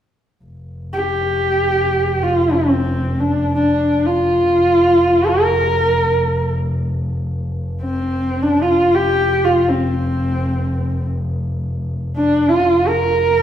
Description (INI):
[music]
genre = mongolian traditional, Mongolian folk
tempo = free time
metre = none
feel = none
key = F zhi mode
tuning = A4 = 440 Hz
[part]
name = muted double bass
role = drone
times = 0.4-13.4 s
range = F1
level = -22 LUFS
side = left 1 dB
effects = none
[part]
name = warm horsehead fiddle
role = melody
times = 0.9-13.4 s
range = C4 to Bb4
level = -15 LUFS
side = equal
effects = none
[sound]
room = wet recital hall reverb, RT60 1.7 s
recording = minimal, uncompressed stereo recording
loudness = -15 LUFS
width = side -10 dB against mid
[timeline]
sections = 0.4-13.4 A section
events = none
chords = none